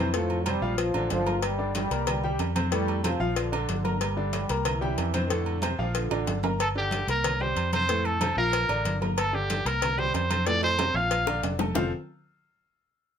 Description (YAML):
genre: latin, salsa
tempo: 186 BPM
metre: 4/4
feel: straight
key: F major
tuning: A4 = 440 Hz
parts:
  - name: warm trombone section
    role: second line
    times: 0.0-6.4 s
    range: C3 to G3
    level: -31 LUFS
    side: right 1 dB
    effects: none
  - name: bright upright piano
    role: accompaniment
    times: 0.0-11.9 s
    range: A2 to Bb5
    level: -31 LUFS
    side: left 1 dB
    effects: none
  - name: vintage muted fingered electric bass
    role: bass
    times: 0.0-11.9 s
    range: F1 to F2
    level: -30 LUFS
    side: equal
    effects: none
  - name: congas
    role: percussion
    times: 0.1-11.8 s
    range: none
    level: -34 LUFS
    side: left 1 dB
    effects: none
  - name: cowbell and bongos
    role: percussion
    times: 0.1-11.8 s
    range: none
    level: -33 LUFS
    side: left 8 dB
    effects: none
  - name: agogo bells and timbales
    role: percussion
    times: 0.3-11.8 s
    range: none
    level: -35 LUFS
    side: right 10 dB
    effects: none
  - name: bright trumpet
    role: melody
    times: 6.6-11.4 s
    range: G4 to F5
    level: -26 LUFS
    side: equal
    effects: none
room: moderate studio ambience, RT60 0.4 s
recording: none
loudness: -24 LUFS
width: side -8 dB against mid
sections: 0.0-6.6 A section; 6.6-11.8 B section; 11.8-13.0 C section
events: drum fill 6.1-6.6, 10.5-11.8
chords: 0.1 F; 0.8 Bb; 1.4 Gm; 2.1 C5; 2.7 F; 3.4 Bb; 4.0 Gm; 4.7 C7; 5.3 F; 6.0 Bb; 6.6 Gm; 7.2 C5; 7.9 F; 8.5 Bb; 9.2 Gm; 9.8 C5; 10.5 F; 11.1 Bb; 11.8 F5